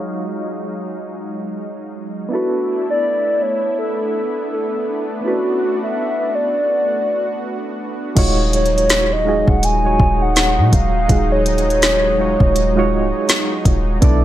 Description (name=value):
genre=contemporary R&B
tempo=82 BPM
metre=4/4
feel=swing 58% on 16ths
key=unclear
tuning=A4 = 439 Hz
part: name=soft electric-piano-like synth keys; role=accompaniment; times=0.0-14.2 s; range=Ab3 to D5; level=-23 LUFS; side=right 3 dB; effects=chorus, tremolo, low-pass filter
part: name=lush unison pad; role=sustained chords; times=0.0-14.2 s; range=E3 to F5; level=-25 LUFS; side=left 1 dB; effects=chorus, low-pass filter
part: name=hollow clarinet-like synth lead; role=melody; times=2.3-13.6 s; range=F#4 to Ab5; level=-18 LUFS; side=equal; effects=chorus, low-pass filter
part: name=clean 808-style bass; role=bass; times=8.2-14.2 s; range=Db1 to Bb2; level=-18 LUFS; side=equal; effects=none
part: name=smooth R&B drum kit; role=drums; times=8.2-14.2 s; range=crash cymbal, hi-hat, kick drum, snare drum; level=-17 LUFS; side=equal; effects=none
room=little or no reverb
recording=none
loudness=-15 LUFS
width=side -13 dB against mid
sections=0.0-8.2 A section; 8.2-14.2 B section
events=filter sweep 0.0-8.2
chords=0.0 Ebm11; 2.3 Bm11; 8.2 Ebm11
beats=0.12 0.85 1.58 | 2.31 3.04 3.78 4.51 | 5.24 5.97 6.70 7.43 | 8.17 8.90 9.63 10.36 | 11.09 11.82 12.56 13.29 | 14.02